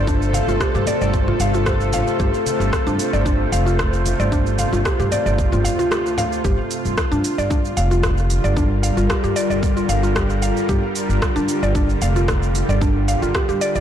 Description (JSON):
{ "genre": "organic downtempo", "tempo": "113 BPM", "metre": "4/4", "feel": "swing 53% on 16ths", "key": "G minor", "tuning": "A4 = 440 Hz", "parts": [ { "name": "bowed-like drone", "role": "sustained chords", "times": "0.0-13.8 s", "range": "C3 to Bb4", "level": "-23 LUFS", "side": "left 1 dB", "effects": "built-in reverb, sidechain pumping, shimmer reverb" }, { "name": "mallet-like synth pluck", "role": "arpeggios", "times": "0.0-13.8 s", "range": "D4 to F5", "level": "-23 LUFS", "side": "equal", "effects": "chorus, digital delay, shimmer reverb" }, { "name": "upright bass", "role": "bass", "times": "0.0-13.8 s", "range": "F1 to G2", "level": "-21 LUFS", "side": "equal", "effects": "tube saturation, sidechain pumping" }, { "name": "wind-like tuned noise texture", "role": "texture", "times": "0.0-6.5 s", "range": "C5", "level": "-30 LUFS", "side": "right 1 dB", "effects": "built-in reverb, shimmer reverb" }, { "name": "electronic kick drum", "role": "drums", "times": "0.1-13.5 s", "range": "none", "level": "-22 LUFS", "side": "equal", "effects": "studio ambience" }, { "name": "organic electronic drum kit", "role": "drums", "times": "0.1-13.8 s", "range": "cabasa, hi-hat, rim click", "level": "-27 LUFS", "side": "right 1 dB", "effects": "studio ambience, soft clipping on snare" }, { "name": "congas and bongos", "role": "percussion", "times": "0.3-6.3 s", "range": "none", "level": "-29 LUFS", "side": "left 2 dB", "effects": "none" } ], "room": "light reverb, digital ambience", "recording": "blown-out, overdriven recording, overdrive", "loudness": "-16 LUFS", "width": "side -10 dB against mid", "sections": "0.0-6.4 A section; 6.4-13.8 A section", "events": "kick drops out 5.9-6.4", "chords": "0.0 F; 6.4 Gm7", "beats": "| 0.07 0.60 1.14 1.67 | 2.20 2.73 3.26 3.79 | 4.32 4.85 5.38 5.92 | 6.45 6.98 7.51 8.04 | 8.57 9.10 9.63 10.16 | 10.69 11.22 11.76 12.29 | 12.82 13.35" }